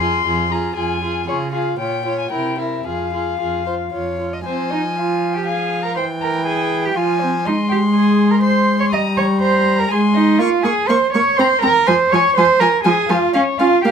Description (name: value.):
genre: quick classical-period movement for string quartet.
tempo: 109-125 BPM.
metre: 3/4.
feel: rubato.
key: F minor.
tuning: A4 = 439 Hz.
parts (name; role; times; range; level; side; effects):
dark violin; melody; 0.0-13.9 s; C5 to Eb6; -23 LUFS; left 8 dB; none.
rich violin; second line; 0.0-13.9 s; Ab4 to Db6; -24 LUFS; left 3 dB; none.
warm viola; accompaniment; 0.0-13.9 s; E3 to F4; -19 LUFS; equal; none.
rich cello; bass; 0.0-13.9 s; F2 to Eb5; -18 LUFS; right 5 dB; none.
room: light reverb.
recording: minimal, uncompressed stereo recording.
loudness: -15 LUFS.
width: side -7 dB against mid.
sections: 0.0-4.5 A section; 4.5-13.9 B section.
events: none.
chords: 0.0 Fm; 1.3 Db; 1.8 Gm7b5/Bb; 2.3 C7; 2.8 Fm; 6.0 C7/E (rootless); 7.0 Fm; 7.5 Ab; 8.9 Eb7/G; 9.9 Ab; 10.4 Bbm; 11.4 Bbsus2/C; 11.9 Fm; 13.3 Db.